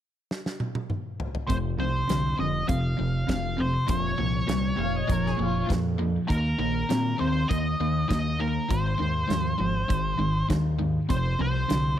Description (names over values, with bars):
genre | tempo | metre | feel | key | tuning
classic rock | 100 BPM | 4/4 | straight | F minor | A4 = 437 Hz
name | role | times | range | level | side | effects
big rock drum kit | drums | 0.3-11.8 s | hi-hat, kick drum, snare drum, toms | -31 LUFS | right 1 dB | none
octave-fuzz lead guitar | melody | 1.5-12.0 s | Bb4 to F5 | -30 LUFS | equal | wah, distortion, slapback echo
cranked stack guitar | riff | 1.5-12.0 s | F2 to C4 | -29 LUFS | left 7 dB | overdrive, spring reverb
crunchy overdriven guitar | riff | 1.5-12.0 s | F2 to C4 | -30 LUFS | right 8 dB | none
growling fingered electric bass | bass | 1.5-11.9 s | F1 to Bb2 | -30 LUFS | equal | overdrive
overdriven electric guitar | second line | 4.8-5.7 s | F4 to F5 | -34 LUFS | left 4 dB | tremolo
room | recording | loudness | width
small room ambience | dry, close 1970s-style studio recording | -24 LUFS | side -10 dB against mid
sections
0.0-1.5 A section; 1.5-12.0 B section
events
drum fill 0.3-1.5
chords
0.0 N.C.; 1.5 F5; 3.9 Bbm/F; 6.3 Eb5; 8.7 Ab; 11.1 F5